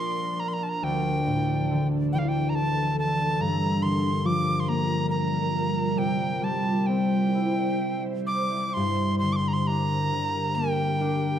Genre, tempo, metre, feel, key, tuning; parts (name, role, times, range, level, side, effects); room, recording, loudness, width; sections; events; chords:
celtic folk, Celtic slow air; 64-72 BPM; 3/4; rubato; G dorian; A4 = 440 Hz
bright reedy mid whistle; melody; 0.0-11.4 s; F5 to D6; -28 LUFS; right 1 dB
concert harp; accompaniment; 0.0-11.4 s; D2 to E4; -26 LUFS; left 1 dB
ethereal airy pad; sustained chords; 0.0-11.4 s; E3 to C5; -31 LUFS; right 3 dB; ensemble chorus, built-in reverb, phaser
moderate recital hall reverb, RT60 1.7 s; dark, warm production; -23 LUFS; side -9 dB against mid
0.0-8.8 A section; 8.8-11.4 B section
0.0 Bb; 0.8 Dsus2; 3.4 Gm7; 6.0 C; 8.8 Gm